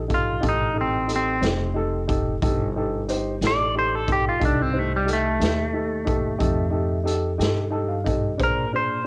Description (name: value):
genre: slow blues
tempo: 60 BPM (dotted quarters)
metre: 12/8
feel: straight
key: F mixolydian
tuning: A4 = 440 Hz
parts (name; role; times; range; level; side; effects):
- clean electric guitar; melody; 0.0-9.1 s; G3 to D5; -26 LUFS; equal; spring reverb, cassette tape
- upright bass; bass; 0.0-9.1 s; F1 to Bb2; -30 LUFS; equal; none
- warm upright piano; accompaniment; 0.1-9.1 s; D4 to A5; -29 LUFS; equal; cassette tape
- raw garage drum kit; drums; 0.1-8.5 s; hi-hat, kick drum, snare drum; -30 LUFS; equal; cassette tape
room: little or no reverb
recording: home recording on cassette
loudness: -23 LUFS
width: mono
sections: 0.0-9.1 A section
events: clean electric guitar solo 0.0-9.1; upright piano fill 7.4-8.4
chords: 0.0 F9; 8.4 Bb9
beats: | 0.43 1.43 2.42 3.42 | 4.41 5.40 6.40 7.39 | 8.38